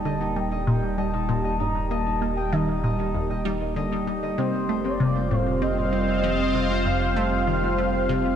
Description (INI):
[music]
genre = ambient, sequencer-driven space music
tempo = 97 BPM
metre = 4/4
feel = straight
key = Eb lydian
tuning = A4 = 440 Hz
[part]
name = expressive synth lead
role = melody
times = 0.0-8.4 s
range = C5 to Bb5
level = -30 LUFS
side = equal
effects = lush chorus, shimmer reverb, tape echo
[part]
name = sweeping resonant pad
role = sustained chords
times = 0.0-8.4 s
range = G3 to G5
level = -26 LUFS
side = right 1 dB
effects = chorus
[part]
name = Celtic harp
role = arpeggios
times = 0.0-8.4 s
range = C4 to G5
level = -31 LUFS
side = moving between left 7 dB and right 1 dB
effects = auto-pan, shimmer reverb, tape echo
[part]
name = warm sub bass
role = bass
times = 0.0-8.4 s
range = Eb1 to F1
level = -30 LUFS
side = equal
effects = none
[part]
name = resonant blip pluck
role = riff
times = 0.1-8.2 s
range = Eb2 to C4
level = -27 LUFS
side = equal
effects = phaser, tape echo
[sound]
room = wet lush hall reverb, RT60 2.8 s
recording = dreamy mix soaked in reverb, cassette tape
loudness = -22 LUFS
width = side -9 dB against mid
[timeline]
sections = 0.0-8.4 A section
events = none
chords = 0.0 Eb; 4.4 Fsus2